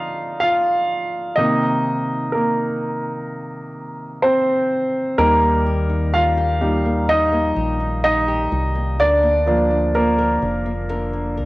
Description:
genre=pop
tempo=63 BPM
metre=4/4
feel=straight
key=unclear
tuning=A4 = 441 Hz
part: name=clear baby grand piano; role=accompaniment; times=0.0-11.5 s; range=C3 to F5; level=-18 LUFS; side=equal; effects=cassette tape
part: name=flamenco guitar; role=arpeggios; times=5.2-11.5 s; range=D3 to Bb4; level=-28 LUFS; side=left 2 dB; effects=cassette tape, analog delay
part: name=organ-like FM bass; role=bass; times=5.2-11.5 s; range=F1 to Eb2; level=-22 LUFS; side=equal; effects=none
room=wet spring reverb, RT60 1.8 s, studio reverb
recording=home recording on cassette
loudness=-16 LUFS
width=side -20 dB against mid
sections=0.0-5.2 A section; 5.2-11.5 B section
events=grand piano solo 0.0-5.2, 5.2-11.5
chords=0.0 Dm7; 1.4 Cm7; 5.2 Eb; 9.0 Bb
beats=0.42 | 1.38 2.33 3.28 4.23 | 5.19 6.14 7.09 8.04 | 9.00 9.95 10.90

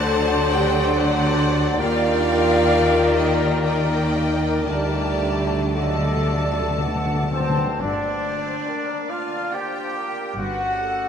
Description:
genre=classical, slow romantic movement for symphony orchestra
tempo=54-74 BPM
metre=3/4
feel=rubato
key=G minor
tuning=A4 = 441 Hz
part: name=warm symphonic violin section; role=melody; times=0.0-10.2 s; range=F#5 to A5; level=-31 LUFS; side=left 3 dB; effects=none
part: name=flute section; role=second line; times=0.0-11.1 s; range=A4 to A5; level=-30 LUFS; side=right 1 dB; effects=none
part: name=mellow cor anglais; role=second line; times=0.0-7.4 s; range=A4 to C5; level=-28 LUFS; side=left 3 dB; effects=none
part: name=rich symphonic violin section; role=second line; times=0.0-11.1 s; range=F#4 to A5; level=-31 LUFS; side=left 1 dB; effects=none
part: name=rich symphonic viola section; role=accompaniment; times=0.0-10.2 s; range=D4 to D5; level=-29 LUFS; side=equal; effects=none
part: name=warm bassoon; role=accompaniment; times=0.0-7.4 s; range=F#3 to A3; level=-31 LUFS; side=right 3 dB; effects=none
part: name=dark French horn section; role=sustained chords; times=0.0-11.1 s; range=F#3 to A4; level=-25 LUFS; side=equal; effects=none
part: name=rich symphonic cello section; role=bass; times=0.0-11.0 s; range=G2 to Eb3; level=-26 LUFS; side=equal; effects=none
part: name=rich symphonic double bass section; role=bass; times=0.0-11.0 s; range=G1 to Eb2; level=-27 LUFS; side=left 1 dB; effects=none
part: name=timpani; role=percussion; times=0.0-0.5, 4.7-7.7 s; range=D3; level=-29 LUFS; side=left 2 dB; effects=none
part: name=warm trumpet section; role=stabs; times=7.3-11.1 s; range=C4 to G4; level=-25 LUFS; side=equal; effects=none
room=wet cathedral reverb, RT60 6.2 s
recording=in a vast, echoing space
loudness=-18 LUFS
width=side -8 dB against mid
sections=0.0-7.8 A section; 7.8-11.1 B section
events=timpani fill 4.7-7.8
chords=0.0 D7; 1.8 Ebmaj7; 4.7 D; 7.8 Gm; 10.4 A7/G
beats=0.11 0.94 | 1.79 2.68 3.64 | 4.67 5.76 6.80 | 7.81 8.68 9.53 | 10.37

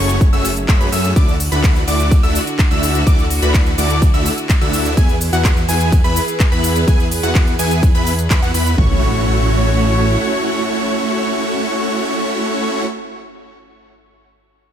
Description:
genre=EDM, festival progressive house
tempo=126 BPM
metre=4/4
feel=straight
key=A major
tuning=A4 = 440 Hz
part: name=warm studio string section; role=sustained chords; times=0.0-12.9 s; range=D3 to C#5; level=-24 LUFS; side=right 1 dB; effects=sidechain pumping
part: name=plucky unison lead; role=arpeggios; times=0.0-12.9 s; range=F#5 to E6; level=-24 LUFS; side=equal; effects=sidechain pumping, tape echo
part: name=big supersaw lead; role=riff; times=0.0-12.9 s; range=A3 to E5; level=-20 LUFS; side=equal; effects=sidechain pumping, tape echo
part: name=fat analog bass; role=bass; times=0.0-10.2 s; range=F#1 to F#2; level=-18 LUFS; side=equal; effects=sidechain pumping
part: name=house drum kit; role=drums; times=0.1-8.8 s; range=cabasa, handclaps, hi-hat, ride cymbal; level=-23 LUFS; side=equal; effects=studio reverb
part: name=house drum kit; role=drums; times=0.2-8.9 s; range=kick drum, toms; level=-14 LUFS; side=equal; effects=studio reverb
part: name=impact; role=sound effects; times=8.8-12.9 s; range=none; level=-25 LUFS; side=equal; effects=none
room=light reverb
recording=none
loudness=-13 LUFS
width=side -10 dB against mid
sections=0.0-8.8 A section; 8.8-12.6 B section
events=drop 0.0-8.8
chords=0.0 F#madd9; 1.2 Dadd9; 5.0 E; 8.8 A6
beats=0.21 0.69 | 1.16 1.64 2.12 2.59 | 3.07 3.54 4.02 4.50 | 4.97 5.45 5.92 6.40 | 6.88 7.35 7.83 8.30 | 8.78 9.26 9.73 10.21 | 10.69 11.16 11.64 12.12

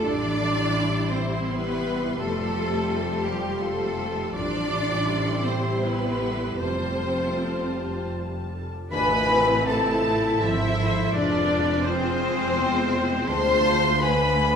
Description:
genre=cinematic, emotional film score for orchestra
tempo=77-86 BPM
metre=3/4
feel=rubato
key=A harmonic minor from 8.9 s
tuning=A4 = 441 Hz
part: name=clear symphonic violin section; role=second line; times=0.0-14.6 s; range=C4 to D5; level=-29 LUFS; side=left 1 dB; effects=none
part: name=mellow French horn section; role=sustained chords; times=0.0-14.6 s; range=C3 to C5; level=-29 LUFS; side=left 2 dB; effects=none
part: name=concert harp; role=arpeggios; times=0.0-14.6 s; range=F2 to G5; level=-33 LUFS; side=left 4 dB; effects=none
part: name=rich symphonic cello section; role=bass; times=0.0-14.6 s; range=D2 to D4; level=-30 LUFS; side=right 2 dB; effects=none
part: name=rich symphonic double bass section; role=bass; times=0.0-14.6 s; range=E1 to D2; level=-32 LUFS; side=right 3 dB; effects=none
part: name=rich symphonic violin section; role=melody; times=0.1-14.6 s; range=C5 to C6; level=-29 LUFS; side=left 2 dB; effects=none
part: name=rich symphonic viola section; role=accompaniment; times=0.1-14.6 s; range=F3 to A4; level=-31 LUFS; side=right 1 dB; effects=none
part: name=bright oboe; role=second line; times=8.9-14.6 s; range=C5 to C6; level=-32 LUFS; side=right 2 dB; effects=none
part: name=bright small flute group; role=second line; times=8.9-14.6 s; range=Ab4 to A5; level=-31 LUFS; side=equal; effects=none
part: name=tam-tam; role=percussion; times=8.9-11.8 s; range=none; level=-36 LUFS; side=equal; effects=none
room=wet recital hall reverb, RT60 1.7 s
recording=heard from further back in the room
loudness=-22 LUFS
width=side -7 dB against mid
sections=0.0-8.9 A section; 8.9-14.6 B section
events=band accent 8.9-9.7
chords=0.1 Am7; 2.2 Fadd9; 4.3 Am7; 6.6 Fadd9; 8.9 Am; 11.1 Fm; 13.3 Dm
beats=| 0.05 0.77 1.48 | 2.19 2.89 3.60 | 4.35 5.08 5.83 | 6.59 7.37 8.14 | 8.91 9.66 10.40 | 11.13 11.84 12.54 | 13.28 14.01

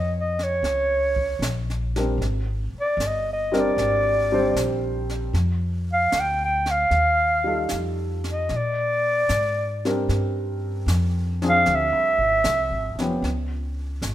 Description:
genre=jazz ballad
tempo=76 BPM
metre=4/4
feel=swing 68% on 8ths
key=unclear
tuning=A4 = 440 Hz
part: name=growling clarinet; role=melody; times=0.0-13.0 s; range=Db5 to G5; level=-21 LUFS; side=equal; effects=none
part: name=warm baby grand piano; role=accompaniment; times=0.0-13.3 s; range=F3 to C5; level=-26 LUFS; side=equal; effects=none
part: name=upright bass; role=bass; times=0.0-14.1 s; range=F1 to Bb2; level=-26 LUFS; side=equal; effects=none
part: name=jazz brush drum kit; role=drums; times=0.4-14.1 s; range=brushed snare drum, hi-hat, kick drum, snare drum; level=-33 LUFS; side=right 1 dB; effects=none
room=moderate large studio reverb, RT60 1.4 s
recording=minimal, uncompressed stereo recording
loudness=-20 LUFS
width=side -13 dB against mid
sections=0.0-14.1 A section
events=clarinet solo 0.0-14.1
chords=0.0 Eb13 (rootless); 2.2 Abmaj9#11; 5.3 F9; 8.5 Bb69; 11.7 Dm7b5; 13.2 Db5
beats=0.62 1.41 | 2.19 2.98 3.76 4.55 | 5.33 6.12 6.91 7.71 | 8.50 9.30 10.09 10.88 | 11.66 12.45 13.24 14.03

